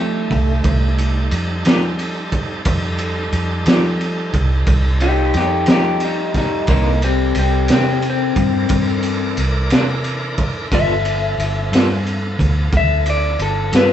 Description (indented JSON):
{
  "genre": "slow blues",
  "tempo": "60 BPM (dotted quarters)",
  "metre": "12/8",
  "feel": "straight",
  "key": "unclear",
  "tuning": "A4 = 440 Hz",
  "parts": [
    { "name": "electric guitar through a small old amp", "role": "melody", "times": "0.0-13.9 s", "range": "G3 to E5", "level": "-19 LUFS", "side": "left 3 dB", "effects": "spring reverb" },
    { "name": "bright tonewheel organ", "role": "sustained chords", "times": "0.0-13.9 s", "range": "E3 to D5", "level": "-28 LUFS", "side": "right 2 dB", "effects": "slow rotary speaker, overdrive" },
    { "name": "vintage muted fingered electric bass", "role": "bass", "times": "0.0-13.9 s", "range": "G1 to F3", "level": "-19 LUFS", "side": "equal", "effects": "none" },
    { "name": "crunchy breakbeat drum kit", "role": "drums", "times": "0.3-13.9 s", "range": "kick drum, ride cymbal, snare drum", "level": "-20 LUFS", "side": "right 1 dB", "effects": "none" },
    { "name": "electric guitar through a small old amp", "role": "accompaniment", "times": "1.7-13.9 s", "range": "C3 to A4", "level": "-22 LUFS", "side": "equal", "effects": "tremolo" }
  ],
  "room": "light reverb",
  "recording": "band playing live in one room, nothing above 8.0 kHz",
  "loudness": "-15 LUFS",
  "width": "side -10 dB against mid",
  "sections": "0.0-13.9 A section",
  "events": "clean electric guitar solo 0.0-13.9",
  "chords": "0.0 F9; 6.7 C9; 10.7 G9"
}